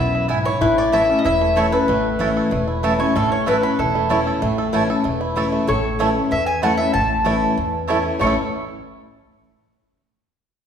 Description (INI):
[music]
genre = bluegrass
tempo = 189 BPM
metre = 4/4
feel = straight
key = A major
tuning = A4 = 439 Hz
[part]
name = mandolin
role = melody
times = 0.0-8.4 s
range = A4 to C#6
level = -22 LUFS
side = equal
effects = none
[part]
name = lap resonator guitar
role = second line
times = 0.0-8.3 s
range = C#4 to C#5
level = -23 LUFS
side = left 3 dB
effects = none
[part]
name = picked steel-string acoustic guitar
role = accompaniment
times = 0.0-8.3 s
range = E2 to E4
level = -22 LUFS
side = left 2 dB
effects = none
[part]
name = bluegrass banjo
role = arpeggios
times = 0.0-8.4 s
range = A3 to A4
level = -25 LUFS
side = right 3 dB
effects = none
[part]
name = upright bass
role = bass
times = 0.0-8.4 s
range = E1 to E2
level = -27 LUFS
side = equal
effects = none
[part]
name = mandolin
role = stabs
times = 0.3-8.3 s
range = A3 to A5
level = -26 LUFS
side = right 4 dB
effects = none
[sound]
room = wet recital hall reverb, RT60 1.6 s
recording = recorded in a church or concert hall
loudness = -16 LUFS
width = side -8 dB against mid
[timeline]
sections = 0.0-5.7 A section; 5.7-8.2 B section; 8.2-9.5 C section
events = none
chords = 0.0 E; 0.6 A